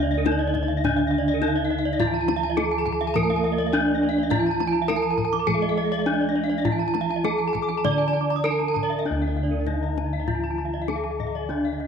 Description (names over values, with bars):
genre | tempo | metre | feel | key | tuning
Balinese gamelan | 101 BPM | 4/4 | uneven beats | D pelog | A4 = 438 Hz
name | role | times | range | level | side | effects
gamelan-type bronze metallophone | melody | 0.0-11.9 s | D4 to D5 | -24 LUFS | left 1 dB | tape echo
gamelan-type bronze metallophone | accompaniment | 0.0-11.9 s | D3 to D4 | -33 LUFS | right 10 dB | none
gamelan-type bronze metallophone | arpeggios | 0.0-11.8 s | Bb4-40c to Eb6 | -29 LUFS | right 10 dB | none
gamelan-type bossed gongs | bass | 0.0-11.9 s | D2 to E4+50c | -28 LUFS | equal | none
gamelan-type bronze metallophone | arpeggios | 0.1-11.9 s | D5 to D6 | -32 LUFS | left 10 dB | none
kendang | percussion | 0.1-11.3 s | none | -30 LUFS | left 7 dB | none
bansuri | second line | 9.8-11.9 s | Eb5 to Bb5-36c | -38 LUFS | left 10 dB | none
room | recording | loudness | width
moderate echo chamber reverb, RT60 2.0 s, small room ambience | 1960s-style stereo with parts hard left and right | -21 LUFS | side -7 dB against mid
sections
0.0-9.1 A section; 9.1-11.9 B section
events
none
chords
none